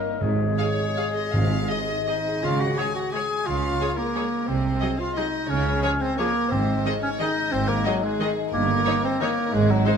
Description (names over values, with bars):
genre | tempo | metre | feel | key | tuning
classical, orchestral ballroom waltz | 149-193 BPM | 3/4 | rubato | Db major | A4 = 444 Hz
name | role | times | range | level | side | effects
mellow hollow small flute group | second line | 0.0-2.2 s | Ab4 to Bb4 | -40 LUFS | right 2 dB | none
warm clarinet | second line | 0.0-10.0 s | Gb3 to Bb4 | -26 LUFS | equal | none
mellow French horn section | sustained chords | 0.0-2.2 s | Ab3 to Bb3 | -32 LUFS | left 3 dB | none
concert harp | arpeggios | 0.0-10.0 s | G2 to Bb5 | -32 LUFS | left 8 dB | none
clear symphonic double bass section | bass | 0.2-9.8 s | G1 to Db2 | -30 LUFS | right 4 dB | none
rich symphonic cello section | bass | 0.2-9.8 s | G2 to Db3 | -29 LUFS | right 4 dB | none
timpani | percussion | 0.2-1.8, 6.5-7.0 s | Ab2 | -30 LUFS | equal | none
clear symphonic violin section | melody | 0.6-9.9 s | C5 to F5 | -34 LUFS | left 5 dB | none
warm chamber violin section | second line | 0.6-10.0 s | Gb4 to Ab5 | -30 LUFS | left 1 dB | none
clear symphonic viola section | accompaniment | 0.6-9.9 s | Eb3 to Ab4 | -33 LUFS | right 1 dB | none
room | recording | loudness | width
moderate concert hall reverb, RT60 1.9 s | none | -21 LUFS | side -7 dB against mid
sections
0.0-2.4 A section; 2.4-10.0 A section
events
none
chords
0.2 Db/Ab; 1.3 Ab; 2.4 Db; 4.5 Ab7/C; 5.5 Db; 6.5 Ab; 8.5 Eb7/G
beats
| 0.21 0.59 0.98 | 1.34 1.70 2.08 | 2.43 2.78 3.13 | 3.47 3.80 4.15 | 4.48 4.82 5.16 | 5.50 5.83 6.19 | 6.52 6.85 7.20 | 7.52 7.85 8.20 | 8.52 8.86 9.21 | 9.53 9.86